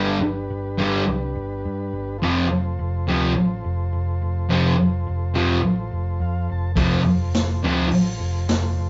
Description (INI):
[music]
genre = garage rock duo or trio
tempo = 105 BPM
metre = 4/4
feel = straight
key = unclear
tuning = A4 = 440 Hz
[part]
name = combo organ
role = sustained chords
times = 0.0-8.9 s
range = D4 to A5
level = -35 LUFS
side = equal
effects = none
[part]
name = thick fuzz guitar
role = riff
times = 0.0-7.9 s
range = F2 to G3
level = -21 LUFS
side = equal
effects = distortion
[part]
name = hollow-body short-scale picked electric bass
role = bass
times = 0.0-8.9 s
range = F1 to G2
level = -27 LUFS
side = equal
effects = overdrive
[part]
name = raw garage drum kit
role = drums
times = 6.8-8.6 s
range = hi-hat, kick drum, snare drum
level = -28 LUFS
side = equal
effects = none
[sound]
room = moderate studio reverb, RT60 0.6 s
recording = band playing live in one room, nothing above 7.7 kHz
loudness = -22 LUFS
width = mono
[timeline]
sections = 0.0-8.9 A section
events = transistor combo organ fill 5.9-6.8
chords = 0.0 G; 2.2 F